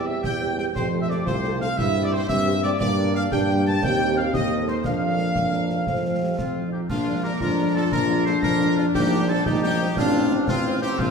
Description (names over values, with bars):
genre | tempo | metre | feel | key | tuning
military-style march for wind band | 117 BPM (dotted quarters) | 6/8 | straight | Bb major | A4 = 439 Hz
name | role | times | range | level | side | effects
warm trumpet section | melody | 0.0-11.1 s | F4 to A5 | -29 LUFS | right 1 dB | none
mellow euphonium | second line | 0.0-6.8 s | Bb3 to G4 | -30 LUFS | right 5 dB | none
warm woodwind section | second line | 0.0-11.1 s | C4 to A5 | -31 LUFS | left 2 dB | none
wooden piccolo | second line | 0.0-11.1 s | C6 to C7 | -32 LUFS | left 2 dB | none
mellow trombone section | sustained chords | 0.0-11.1 s | G3 to Eb4 | -28 LUFS | left 2 dB | none
mellow tuba | bass | 0.0-11.1 s | A1 to G2 | -24 LUFS | right 1 dB | none
dark French horn section | accompaniment | 0.1-10.9 s | Eb3 to C5 | -30 LUFS | left 2 dB | none
concert snare drum, concert bass drum and clash cymbals | drums | 0.2-11.1 s | none | -31 LUFS | left 1 dB | none
room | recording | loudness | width
wet recital hall reverb, RT60 1.5 s | recorded in a church or concert hall | -20 LUFS | side -5 dB against mid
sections
0.0-6.9 A section; 6.9-11.1 B section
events
none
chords
0.0 C/E; 0.8 F; 1.8 C7/G; 2.8 Gm; 3.8 Cm7/Eb; 4.9 Bb/F; 5.9 F; 6.9 Bb; 8.9 Cm7/Bb; 10.0 F7/A